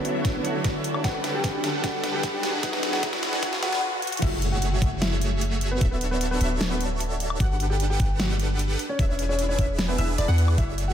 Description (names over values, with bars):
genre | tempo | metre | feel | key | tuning
future bass | 151 BPM | 4/4 | half-time | unclear | A4 = 444 Hz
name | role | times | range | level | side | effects
warm grand piano | melody | 0.0-10.9 s | B3 to G5 | -31 LUFS | left 1 dB | vintage 12-bit sampler grit, sidechain pumping, ping-pong delay
glassy digital keys | accompaniment | 0.0-4.2 s | D3 to C#5 | -32 LUFS | right 2 dB | chorus, sidechain pumping, analog delay
shimmering ambient pad | sustained chords | 0.0-3.8 s | D3 to F#5 | -36 LUFS | left 1 dB | chorus, built-in reverb, phaser, sidechain pumping
supersaw chords | riff | 0.0-10.9 s | A3 to F#5 | -30 LUFS | right 1 dB | phaser, cassette tape, sidechain pumping, low-pass filter
dubstep drum kit | drums | 0.0-10.9 s | crash cymbal, hi-hat, snare drum, woodblock | -30 LUFS | equal | high-pass filter on snare, high-pass filter on hats, high-pass filter on perc, high-pass filter on cymbals
riser and impact | sound effects | 0.3-5.8 s | none | -34 LUFS | left 1 dB | none
electronic kick drum | drums | 0.2-10.7 s | none | -25 LUFS | equal | none
wide unison pluck | arpeggios | 4.2-10.9 s | D5 to F#5 | -37 LUFS | right 1 dB | sidechain pumping, analog delay
warm 808-style bass | bass | 4.2-10.9 s | D1 to E2 | -25 LUFS | equal | sidechain pumping
room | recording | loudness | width
moderate lush hall reverb, RT60 1.8 s, digital ambience | dreamy mix soaked in reverb, high-pass filter | -22 LUFS | side -10 dB against mid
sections
0.0-4.2 A section; 4.2-10.9 B section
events
build-up 0.0-4.2; drum fill 0.0-3.8, 4.0; filter sweep on supersaw synth 0.0-4.2; filter sweep 0.0-4.2; riser 0.3-4.2; stop 3.8-4.2; drop 4.2-10.9; impact 4.2-5.8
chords
0.0 Dmaj9; 1.0 Gmaj9; 2.4 E7; 4.2 F#m9; 5.8 Dmaj9; 7.4 Gmaj9; 8.8 E7